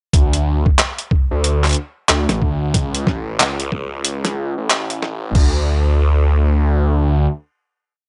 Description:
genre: glitch hop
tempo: 92 BPM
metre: 4/4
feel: swing 61% on 16ths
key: unclear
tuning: A4 = 440 Hz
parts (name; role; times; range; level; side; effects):
- phased detuned saw bass; bass; 0.1-7.3 s; A1 to D2; -19 LUFS; equal; phaser, overdrive
- boom bap sampler-style drum kit; drums; 0.1-5.5 s; crash cymbal, handclaps, hi-hat, snare drum; -20 LUFS; equal; none
- electronic kick drum; drums; 0.1-5.5 s; none; -18 LUFS; equal; none
room: little or no reverb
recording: dry, gritty hardware recording, transformer saturation, high-pass filter, nothing above 10.9 kHz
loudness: -17 LUFS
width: mono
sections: 0.1-5.4 build; 5.4-8.0 final note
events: build-up 0.1-5.4; filter sweep 0.1-5.4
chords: none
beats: | 0.14 0.79 1.44 2.09 | 2.74 3.40 4.05 4.70 | 5.35 6.00 6.66

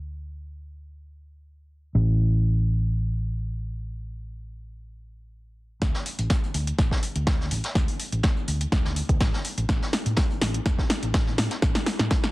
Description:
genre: deep house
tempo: 124 BPM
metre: 4/4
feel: swing 53% on 16ths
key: unclear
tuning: A4 = 440 Hz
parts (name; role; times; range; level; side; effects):
- hollow-body short-scale fingered electric bass; bass; 0.0-12.1 s; A1 to A2; -25 LUFS; equal; sidechain pumping
- deep house drum kit; drums; 5.8-12.3 s; hi-hat, snare drum; -28 LUFS; equal; overdrive, low-pass filter on hats, vintage 12-bit sampler grit, low-pass filter on snare, low-pass filter on cymbals, low-pass filter on room
- electronic kick drum; drums; 5.8-12.2 s; none; -24 LUFS; equal; overdrive, vintage 12-bit sampler grit
- jazz brush drum kit; drums; 5.8-12.3 s; hi-hat, snare drum; -35 LUFS; equal; high-pass filter on hats, vintage 12-bit sampler grit, soft clipping on snare, high-pass filter on snare, high-pass filter on room
room: little or no reverb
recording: dense, heavily limited modern master, low-pass filter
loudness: -22 LUFS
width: side -20 dB against mid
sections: 0.0-5.8 A section; 5.8-12.3 B section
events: filter sweep 0.0-5.8; build-up 5.8-12.3; drum fill 5.8-12.3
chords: none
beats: | 0.01 0.50 0.98 1.46 | 1.95 2.43 2.92 3.40 | 3.88 4.37 4.85 5.33 | 5.82 6.30 6.79 7.27 | 7.75 8.24 8.72 9.21 | 9.69 10.17 10.66 11.14 | 11.62 12.11

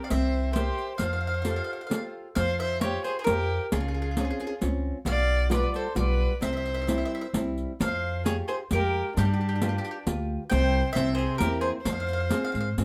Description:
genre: italian folk, Italian serenade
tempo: 133 BPM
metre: 3/4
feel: rubato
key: F harmonic minor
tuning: A4 = 441 Hz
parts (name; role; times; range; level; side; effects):
- bowl-back mandolin; melody; 0.0-12.7 s; G4 to G5; -35 LUFS; equal; slapback echo
- rich violin; second line; 0.0-12.7 s; D4 to D5; -34 LUFS; equal; none
- nylon-string guitar; accompaniment; 0.0-12.8 s; B2 to E5; -35 LUFS; equal; none
- upright bass; bass; 0.1-12.8 s; B1 to Ab2; -31 LUFS; equal; none
- riq; percussion; 0.1-12.8 s; none; -33 LUFS; equal; none
room: light reverb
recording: close, detailed microphones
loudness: -27 LUFS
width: mono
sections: 0.0-2.4 A section; 2.4-12.8 B section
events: none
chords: 0.1 C7; 1.0 Fadd9; 2.4 Fsus2; 3.7 Dbmaj7; 5.1 G7/B; 6.4 C; 7.8 Fmadd9; 9.2 G7; 10.5 C5; 11.0 C7; 11.9 Fm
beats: 0.11 0.55 | 1.00 1.45 1.91 | 2.37 2.83 3.28 | 3.73 4.17 4.61 | 5.05 5.50 5.96 | 6.41 6.87 7.34 | 7.80 8.26 8.71 | 9.17 9.62 10.07 | 10.52 10.96 11.41 | 11.86 12.32 12.78

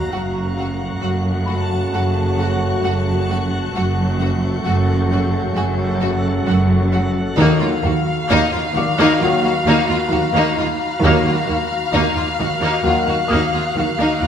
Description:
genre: cinematic, suspense film score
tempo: 66 BPM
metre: 4/4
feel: straight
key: unclear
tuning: A4 = 441 Hz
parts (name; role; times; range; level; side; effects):
- backwards swelling texture; sustained chords; 0.0-14.3 s; Gb4 to A5; -27 LUFS; left 2 dB; built-in reverb
- mellow French horn section; sustained chords; 0.0-13.2 s; A3 to Gb4; -27 LUFS; left 2 dB; none
- warm trombone section; sustained chords; 0.0-13.2 s; Db3 to Gb3; -26 LUFS; right 2 dB; none
- felt-muted upright piano; texture; 0.0-14.3 s; D5 to Eb6; -33 LUFS; left 2 dB; none
- dark chamber violin section; melody; 0.1-14.3 s; F5 to Gb5; -24 LUFS; left 4 dB; none
- rich chamber violin section; second line; 0.1-14.3 s; Eb4 to Gb4; -23 LUFS; left 2 dB; none
- rich chamber viola section; accompaniment; 0.1-14.3 s; A3 to Bb3; -24 LUFS; right 1 dB; none
- rich chamber cello section; riff; 0.1-14.3 s; Gb2 to Eb4; -24 LUFS; right 2 dB; none
- warm chamber cello section; bass; 0.1-14.3 s; Eb2 to Gb2; -22 LUFS; right 1 dB; none
- warm chamber double bass section; bass; 0.1-14.3 s; Gb1 to Eb2; -24 LUFS; right 3 dB; none
- rich chamber violin section; texture; 0.1-14.2 s; Bb5 to Gb6; -32 LUFS; left 6 dB; none
- timpani; percussion; 7.4-8.7 s; Eb3; -24 LUFS; left 1 dB; none
room: wet scoring stage reverb, RT60 1.5 s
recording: none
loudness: -15 LUFS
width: side -8 dB against mid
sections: 0.0-14.3 A section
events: none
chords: 0.1 Gbm; 7.4 Ebmadd9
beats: | 0.12 1.02 1.93 2.84 | 3.75 4.66 5.57 6.48 | 7.39 8.30 9.21 10.12 | 11.03 11.93 12.84 13.75

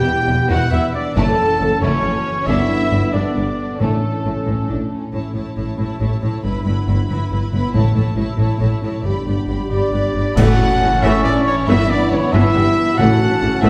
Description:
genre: cinematic, heroic adventure film score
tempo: 92 BPM (dotted quarters)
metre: 6/8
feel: straight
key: A mixolydian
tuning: A4 = 440 Hz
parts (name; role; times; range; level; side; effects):
- warm symphonic violin section; melody; 0.0-13.7 s; A4 to B5; -31 LUFS; equal; none
- warm symphonic violin section; second line; 0.0-13.7 s; G3 to D5; -32 LUFS; equal; none
- rich symphonic viola section; accompaniment; 0.0-13.7 s; C#3 to A4; -26 LUFS; equal; none
- mellow trombone section; sustained chords; 0.0-4.9, 10.4-13.7 s; D3 to C#4; -28 LUFS; equal; none
- concert harp; arpeggios; 0.0-13.7 s; E2 to E5; -29 LUFS; equal; none
- warm trumpet; stabs; 0.0-4.9, 9.7-13.7 s; A4 to A5; -24 LUFS; equal; none
- clear symphonic double bass section; bass; 0.3-13.7 s; E1 to A1; -24 LUFS; equal; none
- rich symphonic cello section; bass; 0.3-13.7 s; E2 to A2; -24 LUFS; equal; none
- timpani; percussion; 3.8-4.4, 7.7-8.3, 10.4-11.0, 13.0-13.6 s; A2; -24 LUFS; equal; none
- dark French horn section; sustained chords; 9.7-13.7 s; C#4 to F#4; -25 LUFS; equal; none
- clear oboe; second line; 10.4-13.7 s; A5 to B5; -32 LUFS; equal; none
- mellow clarinet; second line; 10.4-13.7 s; C#4 to E4; -27 LUFS; equal; none
- clash cymbals and concert bass drum; percussion; 10.4-11.2 s; none; -27 LUFS; equal; none
- flute section; second line; 11.0-13.7 s; G5 to C#6; -30 LUFS; equal; none
room: wet recital hall reverb, RT60 1.6 s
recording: heard from further back in the room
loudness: -17 LUFS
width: mono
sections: 0.0-5.1 A section; 5.1-10.4 B section; 10.4-13.7 C section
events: band accent 10.4-10.8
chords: 0.0 Em; 1.2 F#m7; 2.5 G; 3.8 A; 6.4 Em/G; 7.7 A; 9.0 G; 10.4 A; 11.7 Em/G; 13.0 A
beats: 0.52 | 1.18 1.83 | 2.48 3.14 | 3.81 4.48 | 5.14 5.79 | 6.44 7.09 | 7.74 8.38 | 9.04 9.70 | 10.36 11.02 | 11.67 12.32 | 12.97 13.62

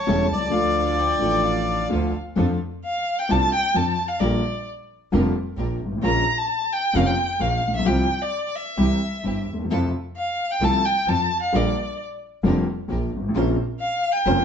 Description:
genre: tango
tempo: 131 BPM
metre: 4/4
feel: rubato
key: F major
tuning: A4 = 443 Hz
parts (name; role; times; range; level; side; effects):
- bandoneon; melody; 0.0-1.9 s; C#5 to D5; -22 LUFS; left 2 dB; none
- warm violin; second line; 0.0-14.4 s; D5 to Bb5; -24 LUFS; left 1 dB; none
- warm grand piano; accompaniment; 0.1-14.4 s; E1 to F4; -24 LUFS; left 2 dB; none
- warm chamber string section; stabs; 0.1-14.4 s; C4 to C5; -32 LUFS; right 1 dB; none
- clear double bass; bass; 0.1-14.4 s; E1 to F2; -26 LUFS; right 2 dB; none
room: moderate studio reverb, RT60 1.0 s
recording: band playing live in one room, nothing above 8.0 kHz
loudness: -20 LUFS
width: side -7 dB against mid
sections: 0.0-2.4 A section; 2.4-14.4 B section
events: violin solo 2.4-14.4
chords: 0.0 A7; 0.5 Dm; 2.4 F6; 4.2 Bb6; 6.0 Bbm; 7.9 Csus4; 8.8 C; 9.7 Fmaj7; 11.5 Bb6; 13.4 Bbmadd9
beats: 0.07 | 0.53 0.98 1.44 1.91 | 2.37 2.83 3.29 3.75 | 4.21 4.67 5.12 5.58 | 6.04 6.49 6.95 7.40 | 7.86 8.32 8.78 9.24 | 9.70 10.16 10.62 11.08 | 11.54 11.99 12.45 12.90 | 13.36 13.82 14.27

